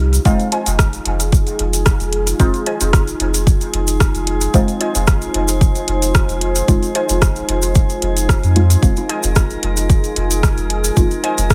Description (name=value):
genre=dub techno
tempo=112 BPM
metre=4/4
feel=swing 53% on 16ths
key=F minor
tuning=A4 = 445 Hz
part: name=dark analog pad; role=sustained chords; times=0.0-11.5 s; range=Eb4 to C5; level=-26 LUFS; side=equal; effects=chorus, sidechain pumping
part: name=soft dub sub bass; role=bass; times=0.0-11.5 s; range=F1 to F2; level=-21 LUFS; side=equal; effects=sidechain pumping
part: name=deep house drum kit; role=drums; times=0.1-11.5 s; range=hi-hat, rim click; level=-25 LUFS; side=equal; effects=dub echo
part: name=tube shaker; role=percussion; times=0.1-11.5 s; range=none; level=-27 LUFS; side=equal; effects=none
part: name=drifting glass-harmonics texture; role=texture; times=1.0-11.5 s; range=Ab3 to Bb4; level=-31 LUFS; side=equal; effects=chorus, built-in reverb, sidechain pumping
part: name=deep mellow chord stab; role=stabs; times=0.3-11.2 s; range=Ab3 to F4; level=-25 LUFS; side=equal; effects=chorus, phaser, sidechain pumping, dub echo
part: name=electronic kick drum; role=drums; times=0.3-11.5 s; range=none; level=-16 LUFS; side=equal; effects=none
part: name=warbly dusty pluck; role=riff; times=0.5-11.3 s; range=F4 to Ab5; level=-29 LUFS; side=equal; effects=chorus, phaser, sidechain pumping, dub echo
room=light reverb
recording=none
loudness=-16 LUFS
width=mono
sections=0.3-11.5 A section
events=filter sweep on synth stab 0.3-11.5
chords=0.3 Fm7